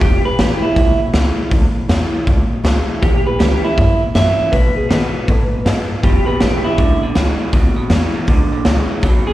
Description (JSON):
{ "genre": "rockabilly", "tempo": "160 BPM", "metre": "4/4", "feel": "swing 64% on 8ths", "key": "E major", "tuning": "A4 = 441 Hz", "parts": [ { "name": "electric guitar through a small old amp", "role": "melody", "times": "0.0-7.0, 9.3 s", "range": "E4 to E5", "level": "-19 LUFS", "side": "right 2 dB", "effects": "slapback echo, tape echo" }, { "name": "picked steel-string acoustic guitar", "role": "accompaniment", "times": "0.0-9.3 s", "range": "E2 to F#4", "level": "-24 LUFS", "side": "left 1 dB", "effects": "slapback echo" }, { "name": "upright bass", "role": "bass", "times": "0.0-9.3 s", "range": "E1 to B2", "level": "-18 LUFS", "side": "equal", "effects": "none" }, { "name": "raw garage drum kit", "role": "drums", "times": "0.0-9.1 s", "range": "hi-hat, kick drum, snare drum", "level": "-16 LUFS", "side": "equal", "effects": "none" }, { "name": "electric guitar through a small old amp", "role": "riff", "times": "6.0-9.3 s", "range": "E2 to F#3", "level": "-22 LUFS", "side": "right 2 dB", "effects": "slapback echo" } ], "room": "studio ambience", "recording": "live gig heard through the venue's PA, recital hall reverb", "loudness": "-13 LUFS", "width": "side -15 dB against mid", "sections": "0.0-9.3 A section", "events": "none", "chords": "0.0 E; 3.0 A; 4.5 B7; 6.0 E", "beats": "| 0.01 0.39 0.76 1.14 | 1.52 1.89 2.27 2.64 | 3.02 3.40 3.77 4.15 | 4.52 4.90 5.28 5.65 | 6.03 6.40 6.78 7.15 | 7.53 7.90 8.28 8.65 | 9.03" }